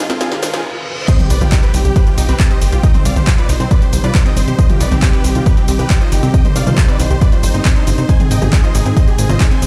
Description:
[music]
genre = uplifting trance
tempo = 137 BPM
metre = 4/4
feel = straight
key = C harmonic minor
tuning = A4 = 439 Hz
[part]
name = big supersaw lead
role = melody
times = 0.0-9.7 s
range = Eb4 to Ab5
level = -26 LUFS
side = equal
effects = sidechain pumping, tape echo
[part]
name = lush unison pad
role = sustained chords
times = 0.0-9.7 s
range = C3 to Eb4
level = -27 LUFS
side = equal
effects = chorus, phaser, sidechain pumping
[part]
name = unison pluck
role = arpeggios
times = 0.0-9.6 s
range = C4 to C5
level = -27 LUFS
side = equal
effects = sidechain pumping, tape echo
[part]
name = riser, reverse cymbal and impact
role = sound effects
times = 0.0-2.8 s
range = none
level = -26 LUFS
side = equal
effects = none
[part]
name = punchy analog drum machine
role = drums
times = 0.1-9.7 s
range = crash cymbal, handclaps, hi-hat, shaker, snare drum, toms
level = -24 LUFS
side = equal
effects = overdrive, high-pass filter on snare, high-pass filter on hats, high-pass filter on perc, high-pass filter on toms, high-pass filter on cymbals, high-pass filter on room
[part]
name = electronic kick drum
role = drums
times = 1.1-9.5 s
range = none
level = -15 LUFS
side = equal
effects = none
[part]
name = plucky analog bass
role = bass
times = 1.3-9.7 s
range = Eb1 to C2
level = -17 LUFS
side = equal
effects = sidechain pumping
[sound]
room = digital ambience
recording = played on a big sound system in a bare room, stone room reverb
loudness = -13 LUFS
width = mono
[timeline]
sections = 0.0-1.1 A section; 1.1-9.7 B section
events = build-up 0.0-1.1; drum fill 0.0-0.6; riser 0.0-1.1; reverse cymbal 0.2-1.1; stop 0.6-1.1; drop 1.1-9.7; impact 1.1-2.8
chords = 0.0 Fm7; 1.1 Cm; 8.1 Ab

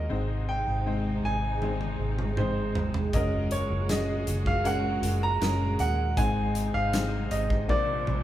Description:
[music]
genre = pop ballad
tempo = 79 BPM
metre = 4/4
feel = straight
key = unclear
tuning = A4 = 439 Hz
[part]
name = bright grand piano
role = melody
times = 0.0-8.2 s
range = C5 to Bb5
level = -31 LUFS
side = right 2 dB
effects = none
[part]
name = bright upright piano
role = accompaniment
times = 0.0-8.2 s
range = Ab2 to C5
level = -32 LUFS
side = left 3 dB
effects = none
[part]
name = rich studio string section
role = sustained chords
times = 0.0-8.2 s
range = Bb2 to Gb4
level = -35 LUFS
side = right 1 dB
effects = none
[part]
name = vintage muted fingered electric bass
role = bass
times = 0.0-8.2 s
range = Gb1 to Eb2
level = -30 LUFS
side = equal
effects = none
[part]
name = modern studio drum kit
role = drums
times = 1.6-8.2 s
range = hi-hat, kick drum, snare drum, toms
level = -31 LUFS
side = equal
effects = none
[sound]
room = wet large studio reverb, RT60 1.3 s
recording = band playing live in one room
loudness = -25 LUFS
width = side -13 dB against mid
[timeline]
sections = 0.0-8.2 A section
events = drum fill 1.6-3.1, 7.7-8.2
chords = 0.1 Ab; 3.1 Gbadd9; 6.2 Ab; 7.7 Bbadd9

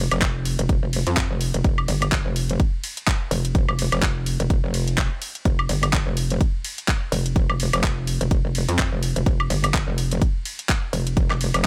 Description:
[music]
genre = bass house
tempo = 126 BPM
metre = 4/4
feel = swing 57% on 16ths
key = unclear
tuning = A4 = 440 Hz
[part]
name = metallic wobble bass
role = bass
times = 0.0-11.7 s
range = F1 to F2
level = -25 LUFS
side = equal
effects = distortion, chorus, tube saturation, sidechain pumping
[part]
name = garage drum kit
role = drums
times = 0.1-11.7 s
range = handclaps, hi-hat, ride cymbal, woodblock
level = -28 LUFS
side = equal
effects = none
[part]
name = electronic kick drum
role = drums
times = 0.2-11.7 s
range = none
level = -24 LUFS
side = equal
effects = none
[sound]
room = little or no reverb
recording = none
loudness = -22 LUFS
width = mono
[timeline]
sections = 0.0-11.7 A section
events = none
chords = none

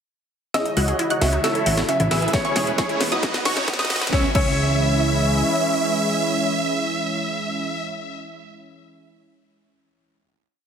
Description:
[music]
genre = uplifting trance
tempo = 134 BPM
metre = 4/4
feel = straight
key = C# minor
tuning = A4 = 440 Hz
[part]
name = supersaw chords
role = melody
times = 0.5-7.8 s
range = C#4 to F#5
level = -24 LUFS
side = right 1 dB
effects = phaser, sidechain pumping, low-pass filter, ping-pong delay
[part]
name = felt-muted upright piano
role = second line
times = 0.5-7.8 s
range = C#5 to E5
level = -28 LUFS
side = left 1 dB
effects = dub echo
[part]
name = wide unison pluck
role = second line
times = 0.5-7.8 s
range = C#6 to F#6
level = -29 LUFS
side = equal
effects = vintage 12-bit sampler grit, sidechain pumping, ping-pong delay
[part]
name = lush unison pad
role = sustained chords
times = 0.7-7.6 s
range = E3 to E4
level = -26 LUFS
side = right 1 dB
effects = chorus, sidechain pumping
[part]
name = wide unison pluck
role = arpeggios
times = 0.5-4.5 s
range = B3 to B4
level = -29 LUFS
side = left 2 dB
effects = sidechain pumping, ping-pong delay
[part]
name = techno drum kit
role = drums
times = 0.5-4.5 s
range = crash cymbal, hi-hat, snare drum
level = -26 LUFS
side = equal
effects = none
[part]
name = riser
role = sound effects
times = 1.9-4.1 s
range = none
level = -32 LUFS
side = equal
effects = none
[part]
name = plucky analog bass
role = bass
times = 0.8-5.4 s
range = E1 to C#2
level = -23 LUFS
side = equal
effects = sidechain pumping
[part]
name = electronic kick drum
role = drums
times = 2.3-4.5 s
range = none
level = -24 LUFS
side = equal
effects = none
[sound]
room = moderate lush hall reverb, RT60 1.8 s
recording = heavily compressed radio sound, high-pass filter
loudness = -19 LUFS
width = side -7 dB against mid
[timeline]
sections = 0.5-4.1 build; 4.1-7.7 final chord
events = build-up 0.5-4.1; drum fill 0.5-4.1; filter sweep on supersaw synth 0.5-4.1; filter sweep on synth pluck 0.5-4.1; filter sweep 0.5-4.1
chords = 0.5 C#madd9; 1.4 A6; 2.3 E; 3.2 B; 4.1 C#m

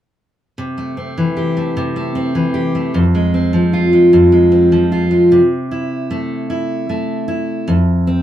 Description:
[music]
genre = pop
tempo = 51 BPM (dotted quarters)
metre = 6/8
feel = straight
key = C major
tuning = A4 = 440 Hz
[part]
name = fingerpicked steel-string acoustic guitar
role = solo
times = 0.6-8.2 s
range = F2 to G4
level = -12 LUFS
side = equal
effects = none
[sound]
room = moderate studio ambience, RT60 0.5 s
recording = band playing live in one room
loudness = -12 LUFS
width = side -11 dB against mid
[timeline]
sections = 0.6-5.3 A section; 5.3-8.2 B section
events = none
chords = 0.6 C6; 2.9 Fm; 5.3 C6; 7.7 F5

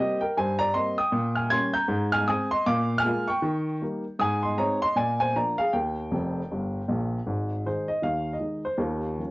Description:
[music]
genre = jazz, stride piano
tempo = 156 BPM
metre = 4/4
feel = swing 60% on 8ths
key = Ab major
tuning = A4 = 440 Hz
[part]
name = warm upright piano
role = solo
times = 0.0-9.3 s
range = F1 to Ab6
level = -24 LUFS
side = equal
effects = cassette tape
[sound]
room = moderate studio reverb, RT60 0.5 s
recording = home recording on cassette, nothing above 7.6 kHz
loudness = -24 LUFS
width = side -21 dB against mid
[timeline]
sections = 0.0-7.3 A section; 7.3-9.3 B section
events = upright piano fill 6.1-7.3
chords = 0.0 Cm7; 1.1 Bbm13; 1.9 Ab; 2.7 Bb5; 3.4 Eb; 4.2 Ab; 5.0 Bb7; 5.7 Eb; 7.3 Ab5; 8.8 Eb9

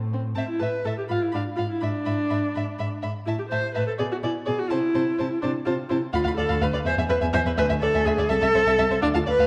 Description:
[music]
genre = quick classical-period movement for string quartet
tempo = 83 BPM (dotted quarters)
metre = 6/8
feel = rubato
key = A minor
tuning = A4 = 444 Hz
[part]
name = rich cello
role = bass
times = 0.0-9.4 s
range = C2 to C3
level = -30 LUFS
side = equal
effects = none
[part]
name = warm violin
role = second line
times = 0.1-9.4 s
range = C4 to F5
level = -34 LUFS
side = equal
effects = none
[part]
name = rich violin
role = melody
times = 0.4-9.4 s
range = E5 to B5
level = -39 LUFS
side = equal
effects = none
[part]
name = rich viola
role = accompaniment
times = 0.4-9.5 s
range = C4 to C5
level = -26 LUFS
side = equal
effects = none
[sound]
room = moderate concert hall reverb, RT60 1.8 s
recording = dark, warm production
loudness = -24 LUFS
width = mono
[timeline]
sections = 0.4-9.5 A section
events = none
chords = 0.4 A5; 1.1 G#dim7; 1.8 E7/G#; 3.3 A5; 4.0 G#dim/B; 4.7 Am/C; 6.1 Bdim/D; 6.9 E; 7.6 E7/D; 8.3 Am/C

